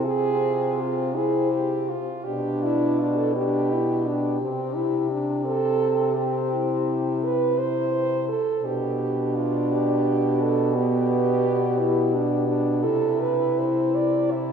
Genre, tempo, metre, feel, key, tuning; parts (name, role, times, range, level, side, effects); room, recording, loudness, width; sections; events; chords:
classical, lyrical piece for horn quartet; 56 BPM (dotted quarters); 12/8; uneven beats, rubato; C major; A4 = 440 Hz
mellow French horn; melody; 0.0-14.5 s; E4 to D5; -30 LUFS; left 6 dB
warm French horn; second line; 0.0-14.5 s; E4 to D5; -25 LUFS; right 4 dB
warm French horn; accompaniment; 0.0-14.5 s; B3 to E4; -26 LUFS; left 2 dB
warm French horn; bass; 0.1-14.5 s; B2 to C3; -27 LUFS; right 2 dB
wet church reverb, RT60 3.1 s; -21 LUFS; side -7 dB against mid
0.0-14.5 A section
0.0 Fm/C; 2.3 G/B; 4.4 C; 8.6 G/B; 12.8 C